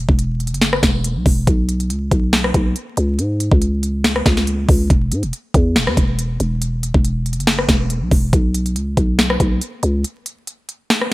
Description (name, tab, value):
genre	hip hop, trap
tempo	140 BPM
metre	4/4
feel	half-time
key	unclear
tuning	A4 = 440 Hz
part	growling 808-style bass	bass	0.0-10.0 s	D#1 to G#2	-18 LUFS	equal	none
part	trap drum kit	drums	0.1-11.1 s	hi-hat, kick drum, rim click, snare drum	-16 LUFS	equal	overdrive
room	light reverb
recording	bright 1980s-style digital production, vinyl crackle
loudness	-15 LUFS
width	side -19 dB against mid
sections	0.0-11.1 A section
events	break 10.0-11.1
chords	none